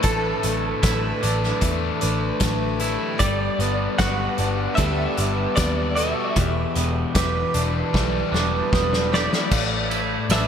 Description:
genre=rock, shoegaze and dream pop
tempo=76 BPM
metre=4/4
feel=straight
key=unclear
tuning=A4 = 440 Hz
part: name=direct-recorded clean electric guitar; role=melody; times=0.0-10.5 s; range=A4 to F#5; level=-28 LUFS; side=equal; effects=ensemble chorus, analog delay
part: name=picked plugged-in twelve-string acoustic guitar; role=arpeggios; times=0.0-10.5 s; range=G4 to B4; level=-30 LUFS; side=right 5 dB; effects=wide subtle chorus, analog delay
part: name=crunchy overdriven guitar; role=riff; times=0.0-10.5 s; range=E2 to F#4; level=-26 LUFS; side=left 9 dB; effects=wide subtle chorus
part: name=twangy electric guitar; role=riff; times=0.0-10.5 s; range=A2 to G4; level=-28 LUFS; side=right 7 dB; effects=reverse reverb
part: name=vintage muted picked electric bass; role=bass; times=0.0-10.5 s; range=E1 to E2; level=-26 LUFS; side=equal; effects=none
part: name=loose indie drum kit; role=drums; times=0.0-10.5 s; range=crash cymbal, hi-hat, kick drum, ride cymbal, snare drum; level=-24 LUFS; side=equal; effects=none
part: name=tambourine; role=percussion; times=9.5-10.5 s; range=none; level=-37 LUFS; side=right 7 dB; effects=none
room=moderate huge ambient reverb, RT60 4.6 s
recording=dreamy mix soaked in reverb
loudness=-19 LUFS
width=side -8 dB against mid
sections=0.0-9.5 A section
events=drum fill 7.9-9.5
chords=0.0 Asus4; 3.2 Gmaj7; 6.4 Em7; 9.5 Asus4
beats=| 0.05 0.84 1.63 2.42 | 3.21 4.00 4.79 5.58 | 6.37 7.16 7.94 8.73 | 9.52 10.31

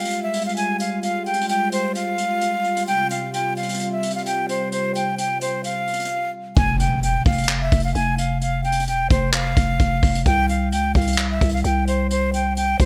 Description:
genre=hip hop, trap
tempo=130 BPM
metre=4/4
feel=half-time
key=unclear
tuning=A4 = 440 Hz
part: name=breathy concert flute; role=melody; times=0.0-12.9 s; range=C5 to Ab5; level=-25 LUFS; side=equal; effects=digital delay
part: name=warm analog pad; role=sustained chords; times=0.0-6.5 s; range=C3 to F4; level=-30 LUFS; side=equal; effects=chorus
part: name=vintage brush drum kit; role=drums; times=0.0-12.9 s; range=handclaps, hi-hat, kick drum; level=-25 LUFS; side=equal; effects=gated reverb
part: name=growling 808-style bass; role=bass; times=6.6-12.9 s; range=E1 to Db2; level=-24 LUFS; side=equal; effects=none
part: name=impact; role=sound effects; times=6.6-8.4 s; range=none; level=-32 LUFS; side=equal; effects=none
room=light reverb, small room ambience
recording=bright 1980s-style digital production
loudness=-21 LUFS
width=mono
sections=0.0-6.6 A section; 6.6-12.9 B section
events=impact 6.6-8.4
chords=0.0 Fmadd9; 2.9 Csus4; 6.6 Csus4 (rootless); 10.3 Csus4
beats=0.10 0.57 | 1.03 1.49 1.95 2.41 | 2.87 3.34 3.80 4.26 | 4.72 5.18 5.64 6.11 | 6.57 7.03 7.49 7.95 | 8.41 8.87 9.34 9.80 | 10.26 10.72 11.18 11.64 | 12.11 12.57

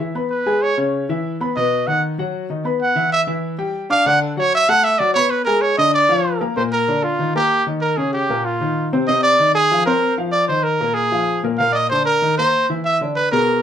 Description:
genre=jazz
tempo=191 BPM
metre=4/4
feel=straight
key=Eb major from 6.6 s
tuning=A4 = 440 Hz
part: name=warm upright piano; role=accompaniment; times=0.0-13.6 s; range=Bb2 to D6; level=-21 LUFS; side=left 3 dB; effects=none
part: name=clear trumpet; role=melody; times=0.3-13.6 s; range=F4 to F#5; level=-16 LUFS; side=right 2 dB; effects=none
room=wet studio reverb, RT60 0.6 s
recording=band playing live in one room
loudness=-15 LUFS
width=side -9 dB against mid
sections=0.0-6.6 A section; 6.6-13.6 B section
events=trumpet solo 0.0-6.6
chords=0.3 C#5; 0.9 C#m7; 1.6 B; 2.8 E5; 3.4 Em7; 4.1 D; 5.3 Bm69; 5.9 A#; 6.6 Ebmaj9; 7.8 Eb13; 9.1 Ab69; 10.3 Bbadd11; 11.0 Bb5; 11.6 Eb5; 12.9 E7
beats=| 0.30 0.62 0.93 1.24 | 1.56 1.87 2.18 2.50 | 2.81 3.12 3.43 3.75 | 4.06 4.37 4.68 5.00 | 5.31 5.62 5.94 6.25 | 6.56 6.88 7.19 7.50 | 7.82 8.13 8.45 8.76 | 9.08 9.39 9.70 10.02 | 10.33 10.65 10.96 11.28 | 11.59 11.91 12.22 12.54 | 12.85 13.17 13.48

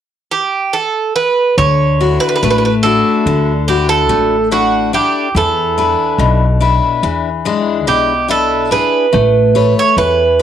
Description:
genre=greek folk, Greek bouzouki band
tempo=143 BPM (eighths)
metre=9/8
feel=straight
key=D major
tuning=A4 = 440 Hz
part: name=Greek bouzouki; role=melody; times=0.3-10.4 s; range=F#4 to C#5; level=-13 LUFS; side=right 5 dB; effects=cassette tape
part: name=picked steel-string acoustic guitar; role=accompaniment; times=1.6-10.4 s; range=B2 to F#5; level=-15 LUFS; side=left 7 dB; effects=none
part: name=upright bass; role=bass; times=1.6-10.4 s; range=A1 to E2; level=-17 LUFS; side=equal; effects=none
room=moderate studio reverb, RT60 0.6 s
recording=home recording on cassette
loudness=-11 LUFS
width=side -9 dB against mid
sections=0.0-1.6 A section; 1.6-10.4 B section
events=none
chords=0.0 N.C.; 1.6 Dadd9; 5.4 E7; 9.1 Aadd9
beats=0.32 0.74 1.16 | 1.58 2.00 2.42 2.84 3.26 3.68 4.10 4.52 4.93 | 5.36 5.78 6.20 6.62 7.04 7.46 7.88 8.30 8.72 | 9.14 9.56 9.98 10.40

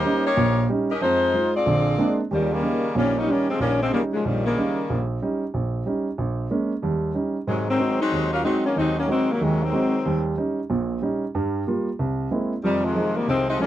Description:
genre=jazz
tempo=186 BPM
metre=4/4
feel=swing 62% on 8ths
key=Eb mixolydian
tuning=A4 = 445 Hz
part: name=clear saxophone section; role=melody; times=0.0-5.1, 7.5-10.3, 12.6-13.7 s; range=Bb2 to Eb5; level=-22 LUFS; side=left 2 dB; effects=none
part: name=warm baby grand piano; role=accompaniment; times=0.0-13.7 s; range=Bb1 to Gb4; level=-23 LUFS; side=right 2 dB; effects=none
room=light reverb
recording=dry, close 1970s-style studio recording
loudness=-20 LUFS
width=side -12 dB against mid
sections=0.0-2.3 A section; 2.3-13.7 B section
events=none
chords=0.0 Eb7; 1.0 Fm7; 1.7 Bb9; 2.3 Eb7; 6.2 Bbm7; 6.8 Eb7; 7.5 Ab7; 10.0 Eb7; 11.3 Gm7; 12.0 Caug7; 12.6 Fm7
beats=0.04 0.36 0.69 | 1.01 1.33 1.65 1.98 | 2.30 2.62 2.94 3.27 | 3.59 3.91 4.24 4.56 | 4.88 5.20 5.53 5.85 | 6.17 6.50 6.82 7.14 | 7.46 7.79 8.11 8.43 | 8.76 9.08 9.40 9.72 | 10.05 10.37 10.69 11.01 | 11.34 11.66 11.98 12.30 | 12.62 12.95 13.27 13.59

